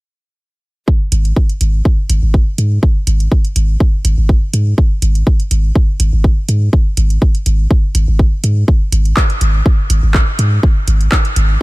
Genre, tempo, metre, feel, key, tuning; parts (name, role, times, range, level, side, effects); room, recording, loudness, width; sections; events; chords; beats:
minimal techno; 123 BPM; 4/4; swing 54% on 16ths; A4 = 440 Hz
electronic kick drum; drums; 0.9-11.2 s; -11 LUFS; equal
punchy sub bass; bass; 1.1-11.6 s; G#1 to G#2; -12 LUFS; equal; sidechain pumping
booming analog drum machine; drums; 1.1-11.5 s; handclaps, hi-hat; -21 LUFS; right 1 dB; overdrive
little or no reverb; -11 LUFS; side -22 dB against mid
0.9-11.6 A section
| 0.88 1.36 1.85 2.34 | 2.83 3.32 3.80 4.29 | 4.78 5.27 5.75 6.24 | 6.73 7.22 7.71 8.19 | 8.68 9.17 9.66 10.14 | 10.63 11.12